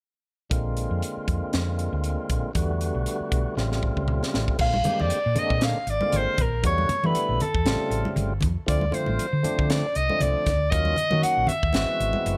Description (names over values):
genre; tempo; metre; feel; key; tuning
electric jazz fusion; 118 BPM; 4/4; swing 56% on 16ths; unclear; A4 = 440 Hz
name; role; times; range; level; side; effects
tonewheel organ; accompaniment; 0.5-12.4 s; C#3 to G4; -32 LUFS; equal; slow rotary speaker, overdrive
hollow-body short-scale fingered electric bass; bass; 0.5-12.4 s; Gb1 to E3; -29 LUFS; equal; none
crisp fusion drum kit; drums; 0.5-12.4 s; crash cymbal, hi-hat, kick drum, snare drum, toms; -30 LUFS; equal; none
mellow soprano saxophone; melody; 4.6-12.4 s; A4 to Gb5; -27 LUFS; equal; none
congas; percussion; 4.7-12.2 s; none; -34 LUFS; equal; none
room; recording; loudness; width
light reverb, small room reverb; none; -24 LUFS; mono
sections
0.5-4.6 A section; 4.6-12.4 B section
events
drum fill 3.6-4.6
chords
0.5 Bb9; 2.6 Em11; 3.6 A7alt; 4.6 Bb9; 6.6 Em11; 7.7 A7alt; 8.7 Dm7; 10.7 Ebm7; 11.7 Ab7alt